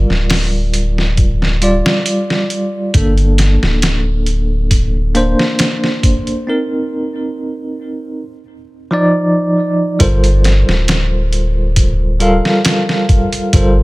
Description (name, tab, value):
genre	trip hop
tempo	68 BPM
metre	4/4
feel	swing 53% on 16ths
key	G minor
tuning	A4 = 439 Hz
part	bell-like tine electric piano	accompaniment	0.0-13.8 s	F3 to F5	-16 LUFS	equal	tremolo, tape echo
part	soft dub sub bass	bass	0.0-13.8 s	D1 to G1	-14 LUFS	equal	none
part	trip hop sampler-style drum kit	drums	0.1-13.8 s	hi-hat, kick drum, snare drum	-15 LUFS	equal	studio reverb
room	little or no reverb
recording	none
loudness	-12 LUFS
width	side -21 dB against mid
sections	0.0-10.0 A section; 10.0-13.8 B section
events	break 6.5-10.0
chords	0.0 Gm7; 2.9 Bbmaj7; 6.5 Cm7; 8.2 Dm/F; 10.0 Gm11